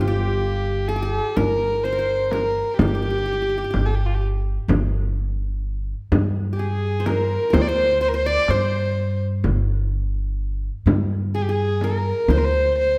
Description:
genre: Arabic maqam ensemble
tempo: 126 BPM (eighths)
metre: 10/8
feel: straight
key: G maqam bayati, G maqam kurd from 4.7 s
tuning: A4 = 440 Hz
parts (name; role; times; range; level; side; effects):
- warm violin; melody; 0.0-13.0 s; F4 to D5; -25 LUFS; equal; slapback echo
- qanun; second line; 0.0-13.0 s; F4 to D5; -32 LUFS; equal; none
- upright bass; bass; 0.0-13.0 s; G1 to G2; -25 LUFS; equal; none
- frame drum; percussion; 1.4-12.5 s; none; -26 LUFS; equal; none
room: moderate recital hall reverb, RT60 1.5 s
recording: none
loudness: -22 LUFS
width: mono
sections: 0.0-4.7 A section; 4.7-13.0 B section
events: none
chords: none

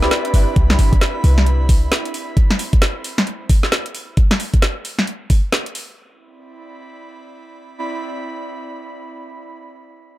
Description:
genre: UK garage, two-step garage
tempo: 133 BPM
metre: 4/4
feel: swing 61% on 16ths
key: C major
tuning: A4 = 439 Hz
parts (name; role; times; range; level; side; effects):
- soft string machine; sustained chords; 0.0-2.3 s; D4 to B4; -27 LUFS; equal; phaser, ensemble chorus, sidechain pumping
- short 808-style bass; bass; 0.0-1.9 s; G1 to C2; -14 LUFS; equal; sidechain pumping
- garage drum kit; drums; 0.0-5.9 s; hi-hat, snare drum; -20 LUFS; equal; none
- airy breathy pad; texture; 0.0-9.6 s; C4 to B5; -30 LUFS; right 2 dB; chorus, sidechain pumping
- electronic kick drum; drums; 0.6-5.4 s; none; -14 LUFS; equal; none
room: little or no reverb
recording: echo-heavy mix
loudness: -15 LUFS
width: side -16 dB against mid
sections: 0.0-6.0 A section; 6.0-9.6 B section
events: fade-out on analog synth pad 0.0-4.2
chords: 0.0 Cmaj9; 4.2 N.C.; 6.0 Cmaj9

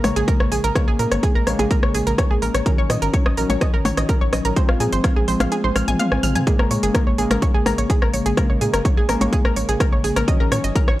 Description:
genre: melodic techno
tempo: 126 BPM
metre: 4/4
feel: straight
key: Bb minor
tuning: A4 = 440 Hz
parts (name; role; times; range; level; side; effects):
- analog pluck; arpeggios; 0.0-11.0 s; Ab4 to F6; -24 LUFS; right 1 dB; chorus, sidechain pumping, analog delay
- analog synth brass; stabs; 0.0-11.0 s; Db3 to Db4; -24 LUFS; left 2 dB; chorus, sidechain pumping, analog delay
- tight sequencer bass; bass; 0.0-10.9 s; Ab1 to Bb2; -23 LUFS; equal; sidechain pumping
- techno drum kit; drums; 0.0-11.0 s; hi-hat, percussion blips, rim click, toms; -24 LUFS; equal; overdrive, small room ambience
- electronic kick drum; drums; 0.3-10.9 s; none; -18 LUFS; equal; overdrive, small room ambience
room: light reverb, digital ambience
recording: dry, gritty hardware recording, cassette tape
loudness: -16 LUFS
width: side -16 dB against mid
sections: 0.0-11.0 A section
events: kick drops out 5.5-6.5; drum fill 5.5-6.5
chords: 0.0 Bbm7; 2.7 Ebm7; 4.6 Fm; 6.5 Bbm7; 10.3 Ebm7

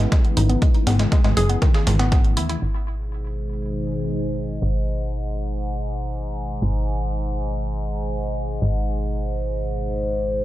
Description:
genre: melodic techno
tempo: 120 BPM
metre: 4/4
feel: straight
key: G# phrygian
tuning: A4 = 441 Hz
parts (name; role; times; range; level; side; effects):
- sweeping resonant pad; sustained chords; 0.0-10.4 s; B2 to G#4; -30 LUFS; equal; chorus, vintage 12-bit sampler grit, sidechain pumping
- woody wave-folded pluck; arpeggios; 0.0-2.6 s; D#3 to G#4; -25 LUFS; equal; chorus, sidechain pumping, digital delay
- plucky analog bass; bass; 0.0-10.4 s; F#1 to D#2; -23 LUFS; equal; sidechain pumping
- dusty soul sampler-style drum kit; drums; 0.0-2.6 s; hi-hat, snare drum; -33 LUFS; equal; sidechain pumping on hats, high-pass filter on hats, high-pass filter on snare, high-pass filter on room
- electronic hi-hat; drums; 0.0-2.6 s; none; -30 LUFS; right 2 dB; sidechain pumping on hats, low-pass filter on hats
- electronic kick drum; drums; 0.1-2.2 s; none; -17 LUFS; equal; none
- overtone-sweeping drone; drone; 3.0-10.4 s; G#2; -29 LUFS; equal; chorus, built-in reverb, sidechain pumping
room: light reverb, digital ambience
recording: dark, warm production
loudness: -20 LUFS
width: side -15 dB against mid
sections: 0.0-2.6 A section; 2.6-10.4 B section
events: filter sweep on synth pluck 0.0-2.6; filter sweep on analog synth pad 2.6-10.4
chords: 0.0 Aadd9; 2.6 G#m

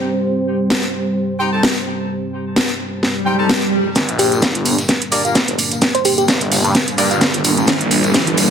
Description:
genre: bass house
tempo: 129 BPM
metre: 4/4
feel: swing 55% on 16ths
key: G minor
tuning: A4 = 440 Hz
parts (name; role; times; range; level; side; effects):
- dark analog pad; sustained chords; 0.0-8.5 s; G3 to C5; -22 LUFS; equal; chorus, sidechain pumping
- house drum kit; drums; 0.7-8.5 s; hi-hat, snare drum; -17 LUFS; equal; none
- clear horn section; stabs; 1.4-7.2 s; Bb3 to A5; -23 LUFS; equal; sidechain pumping, low-pass filter, dub echo
- swell and riser; sound effects; 3.1-8.5 s; none; -22 LUFS; right 1 dB; none
- phased detuned saw bass; bass; 4.0-8.5 s; F1 to G2; -19 LUFS; equal; phaser, overdrive, sidechain pumping, high-pass filter
- dusty soul sampler-style drum kit; drums; 4.0-8.5 s; hi-hat, shaker, snare drum; -25 LUFS; equal; overdrive, sidechain pumping on perc, high-pass filter on perc, high-pass filter on snare, sidechain pumping on hats, high-pass filter on hats
- electronic kick drum; drums; 4.0-8.2 s; none; -23 LUFS; equal; high-pass filter on kick
- tambourine; percussion; 4.0-8.5 s; none; -25 LUFS; left 3 dB; none
- bell-like FM electric piano; melody; 4.2-6.2 s; G4 to C5; -21 LUFS; equal; chorus, phaser, dub echo
room: moderate plate reverb, RT60 1.2 s, digital ambience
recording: dense, heavily limited modern master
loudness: -14 LUFS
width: side -7 dB against mid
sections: 0.0-4.0 A section; 4.0-8.5 B section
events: swell 3.1-4.0; build-up 4.0-8.5; drum fill 4.0-8.5; riser 4.0-8.5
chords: 0.0 Cm; 4.0 Gm

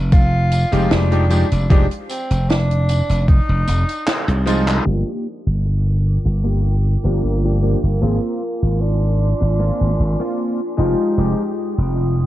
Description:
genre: vaporwave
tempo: 76 BPM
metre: 4/4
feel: straight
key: F dorian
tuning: A4 = 439 Hz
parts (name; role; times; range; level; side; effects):
- glassy slap bass; bass; 0.0-12.3 s; F1 to C2; -16 LUFS; equal; none
- warm tenor saxophone; melody; 0.1-10.8 s; Bb3 to F4; -26 LUFS; right 1 dB; vintage 12-bit sampler grit, tape echo
- compact cocktail drum kit; drums; 0.1-4.8 s; handclaps, hi-hat, snare drum, tambourine; -24 LUFS; right 1 dB; small room reverb
- electronic kick drum; drums; 0.1-3.5 s; none; -12 LUFS; equal; overdrive, small room reverb
- bright electric grand piano; accompaniment; 0.7-11.4 s; F3 to Ab4; -22 LUFS; left 1 dB; wide subtle chorus, vintage 12-bit sampler grit, analog delay
- warbly tape-like pad; sustained chords; 5.8-12.3 s; Ab3 to Eb6; -28 LUFS; right 1 dB; chorus, built-in reverb
- clean electric guitar; riff; 4.9-12.0 s; Ab3 to Bb4; -26 LUFS; left 1 dB; analog chorus, low-pass filter, analog delay
room: little or no reverb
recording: dark, warm production, cassette tape, low-pass filter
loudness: -15 LUFS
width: side -14 dB against mid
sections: 0.0-4.9 A section; 4.9-12.3 B section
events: drum fill 4.1-4.9; filter sweep 4.9-12.3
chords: 0.0 Fm9; 4.9 Gm7; 8.0 Ab69; 10.8 Fm9

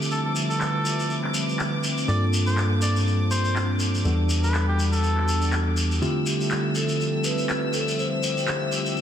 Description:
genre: deep house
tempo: 122 BPM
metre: 4/4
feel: swing 56% on 16ths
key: D dorian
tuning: A4 = 441 Hz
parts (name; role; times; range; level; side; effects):
- warm analog pad; sustained chords; 0.0-9.0 s; E2 to E5; -30 LUFS; left 1 dB; chorus, tremolo
- bell-like tine electric piano; stabs; 0.0-9.0 s; E2 to A4; -24 LUFS; equal; lush chorus, low-pass filter
- shekere; percussion; 0.0-9.0 s; none; -31 LUFS; left 1 dB; none
- warm studio violin section; texture; 0.0-9.0 s; D6 to E6; -34 LUFS; left 2 dB; none
- trumpet with cup mute; melody; 0.1-5.6 s; G4 to D5; -30 LUFS; equal; ping-pong delay
- electronic handclaps; drums; 0.6-8.6 s; none; -33 LUFS; equal; low-pass filter on hats, low-pass filter on snare, low-pass filter on room
- vibraphone with medium mallets; melody; 6.0-8.7 s; F4 to C5; -29 LUFS; left 1 dB; ping-pong delay
room: moderate plate reverb, RT60 2.5 s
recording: dense, heavily limited modern master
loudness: -21 LUFS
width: side -9 dB against mid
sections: 0.0-9.0 A section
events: none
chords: 0.0 Dm11; 2.1 Gm11; 4.0 Em11; 6.0 Dm11

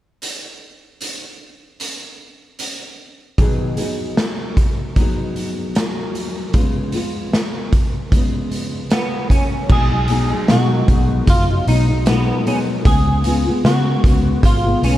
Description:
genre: indie pop, bedroom pop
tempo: 76 BPM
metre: 4/4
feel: swing 55% on 16ths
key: B lydian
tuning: A4 = 440 Hz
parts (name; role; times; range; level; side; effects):
- raw garage drum kit; drums; 0.2-15.0 s; crash cymbal, hi-hat, kick drum, snare drum; -18 LUFS; equal; none
- nylon-string guitar; accompaniment; 3.4-15.0 s; B2 to G#4; -21 LUFS; left 2 dB; wide subtle chorus, vibrato effect
- semi-hollow electric guitar; melody; 8.9-15.0 s; B3 to G#4; -22 LUFS; right 1 dB; analog chorus, tape echo
- vintage muted fingered electric bass; bass; 9.7-15.0 s; F#1 to C#3; -18 LUFS; equal; none
room: light reverb, small room reverb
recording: dark, warm production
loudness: -15 LUFS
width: side -14 dB against mid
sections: 0.2-3.4 A section; 3.4-9.7 B section; 9.7-15.0 C section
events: none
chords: 0.2 N.C.; 3.4 B6; 6.5 C#7; 9.7 B6; 12.9 C#7

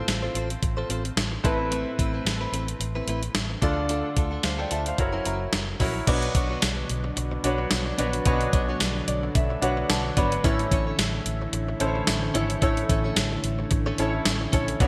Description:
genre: 1980s-style pop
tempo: 110 BPM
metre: 4/4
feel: swing 55% on 16ths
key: A minor, B minor from 6.1 s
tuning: A4 = 439 Hz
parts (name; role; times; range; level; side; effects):
- clear concert grand piano; accompaniment; 0.0-14.9 s; A2 to B5; -31 LUFS; equal; subtle chorus
- direct-recorded clean electric guitar; riff; 0.0-14.9 s; F#3 to C#5; -36 LUFS; equal; subtle chorus, digital delay
- vintage muted fingered electric bass; bass; 0.1-14.9 s; F#1 to D2; -32 LUFS; equal; none
- gated 80s digital drum machine; drums; 0.1-14.9 s; crash cymbal, hi-hat, kick drum, snare drum, tambourine; -28 LUFS; equal; gated reverb, gated reverb snare
- lush unison pad; sustained chords; 6.1-14.9 s; D3 to E4; -35 LUFS; equal; chorus
room: moderate lush hall reverb, RT60 1.8 s, digital ambience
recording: bright 1980s-style digital production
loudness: -25 LUFS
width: mono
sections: 0.0-6.1 A section; 6.1-14.9 B section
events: grand piano fill 8.8-10.4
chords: 0.0 F/A; 1.4 Amadd9; 3.6 Dm; 5.0 F#7; 6.1 Bmadd9; 10.4 A

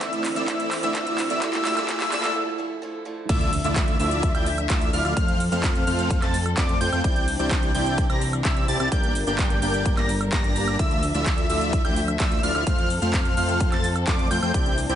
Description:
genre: EDM, festival progressive house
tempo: 128 BPM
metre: 4/4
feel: straight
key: D minor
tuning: A4 = 441 Hz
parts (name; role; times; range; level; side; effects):
- picked old ladder-braced acoustic guitar; accompaniment; 0.0-3.3 s; D3 to E4; -30 LUFS; right 4 dB; sidechain pumping, tape echo
- dark studio string section; sustained chords; 0.0-15.0 s; G2 to E5; -31 LUFS; left 2 dB; sidechain pumping
- wide unison lead; arpeggios; 0.0-15.0 s; D6 to Bb6; -28 LUFS; equal; sidechain pumping, tape echo
- dense compressed supersaw; riff; 0.0-15.0 s; A3 to Bb5; -28 LUFS; equal; sidechain pumping, tape echo
- big-room dance drum kit; drums; 0.0-15.0 s; crash cymbal, handclaps, hi-hat, shaker, woodblock; -30 LUFS; right 1 dB; studio reverb
- electronic kick drum; drums; 0.0-14.6 s; none; -24 LUFS; equal; overdrive, high-pass filter on kick, studio reverb
- riser and impact; sound effects; 0.0-5.2 s; none; -34 LUFS; right 1 dB; none
- fat analog bass; bass; 3.3-15.0 s; G1 to F2; -28 LUFS; equal; sidechain pumping
room: light reverb, digital ambience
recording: high-pass filter, nothing above 10.4 kHz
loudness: -20 LUFS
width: side -10 dB against mid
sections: 0.0-3.3 A section; 3.3-15.0 B section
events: build-up 0.0-3.3; drum fill 0.0-2.4; riser 0.0-2.4; break 2.4-3.3; drop 3.3-15.0; impact 3.3-5.2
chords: 0.0 Cadd9; 1.4 Gm; 3.3 Dmadd9; 5.2 F; 7.0 Cadd9; 8.9 Gm; 10.8 Dmadd9; 12.7 F

